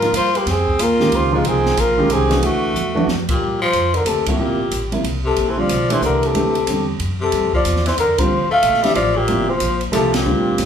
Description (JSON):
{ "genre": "modal jazz", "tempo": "184 BPM", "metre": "3/4", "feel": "swing 64% on 8ths", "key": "G dorian from 3.4 s", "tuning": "A4 = 441 Hz", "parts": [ { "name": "trumpet with bucket mute", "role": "melody", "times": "0.0-10.7 s", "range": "F4 to F5", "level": "-19 LUFS", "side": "equal", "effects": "none" }, { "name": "growling tenor saxophone", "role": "second line", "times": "0.0-10.7 s", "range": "Bb2 to F4", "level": "-22 LUFS", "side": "left 1 dB", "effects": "none" }, { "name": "warm grand piano", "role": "accompaniment", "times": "0.0-10.7 s", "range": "C3 to A4", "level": "-21 LUFS", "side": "right 2 dB", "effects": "none" }, { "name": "upright bass", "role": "bass", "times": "0.0-10.7 s", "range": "G1 to A2", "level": "-23 LUFS", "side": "equal", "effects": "none" }, { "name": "open jazz drum kit", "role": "drums", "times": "0.0-10.7 s", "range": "hi-hat, kick drum, ride cymbal, snare drum, toms", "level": "-25 LUFS", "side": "right 1 dB", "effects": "none" } ], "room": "wet large studio reverb, RT60 0.8 s", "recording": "band playing live in one room", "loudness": "-15 LUFS", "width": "side -8 dB against mid", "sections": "0.0-3.4 A section; 3.4-10.7 B section", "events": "drum fill 2.8-3.4; band accent 3.2, 4.2, 8.1, 10.1", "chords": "0.0 Fm; 2.4 D; 3.4 Gm11", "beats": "0.14 | 0.46 0.79 1.12 | 1.44 1.77 2.10 | 2.42 2.75 3.08 | 3.40 3.73 4.06 | 4.38 4.71 5.04 | 5.37 5.69 6.02 | 6.34 6.67 7.00 | 7.32 7.65 7.98 | 8.30 8.63 8.96 | 9.28 9.61 9.94 | 10.26 10.59" }